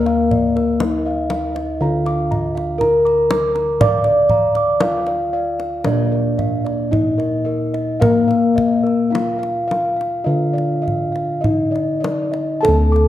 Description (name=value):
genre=Javanese gamelan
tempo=49-60 BPM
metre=4/4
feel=straight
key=D pelog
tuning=A4 = 439 Hz
part: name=gamelan-type bronze metallophone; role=melody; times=0.0-13.1 s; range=Bb3 to D5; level=-18 LUFS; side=left 1 dB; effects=none
part: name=gamelan-type bossed gongs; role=arpeggios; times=0.0-13.1 s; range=Bb4 to D6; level=-26 LUFS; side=left 3 dB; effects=none
part: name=gamelan-type bronze metallophone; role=arpeggios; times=0.0-13.1 s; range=Bb4 to D6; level=-25 LUFS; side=right 2 dB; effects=none
part: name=gamelan-type bossed gongs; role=bass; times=0.0-13.1 s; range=D2 to D5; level=-22 LUFS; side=equal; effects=none
part: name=kendang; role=percussion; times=0.1-13.1 s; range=none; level=-23 LUFS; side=equal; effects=none
room=wet recital hall reverb, RT60 1.4 s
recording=dark, warm production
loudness=-15 LUFS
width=side -12 dB against mid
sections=0.0-12.6 A section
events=none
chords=none